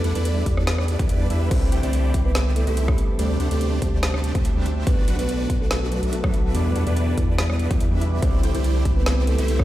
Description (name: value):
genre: future bass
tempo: 143 BPM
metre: 4/4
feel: swing 53% on 16ths, half-time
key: C lydian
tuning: A4 = 440 Hz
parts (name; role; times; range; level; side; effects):
- ethereal airy pad; sustained chords; 0.0-9.6 s; B4 to D6; -38 LUFS; right 1 dB; ensemble chorus, built-in reverb, phaser, sidechain pumping
- supersaw chords; riff; 0.0-9.6 s; G3 to G5; -29 LUFS; right 1 dB; phaser, sidechain pumping
- saturated sub bass; bass; 0.0-9.6 s; B1 to E2; -22 LUFS; equal; sidechain pumping
- trap drum kit; drums; 0.0-9.6 s; crash cymbal, hi-hat, rim click, snare drum; -29 LUFS; equal; none
- kalimba; melody; 0.5-9.6 s; E3 to C5; -30 LUFS; equal; vintage 12-bit sampler grit, sidechain pumping, tape echo
- electronic kick drum; drums; 0.5-9.6 s; none; -22 LUFS; equal; none
- mellow electric guitar; accompaniment; 1.5-9.6 s; B2 to E4; -31 LUFS; equal; sidechain pumping
room: little or no reverb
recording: played on a big sound system in a bare room, large studio reverb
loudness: -19 LUFS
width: side -14 dB against mid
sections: 0.0-9.6 A section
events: none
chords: 0.0 Em7; 1.5 C69; 3.0 D7sus4; 4.9 Bm7; 6.5 Em7; 8.2 C69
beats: 0.25 0.67 1.09 | 1.51 1.93 2.35 2.77 | 3.19 3.61 4.03 4.45 | 4.87 5.29 5.71 6.13 | 6.55 6.97 7.39 7.80 | 8.22 8.64 9.06 9.48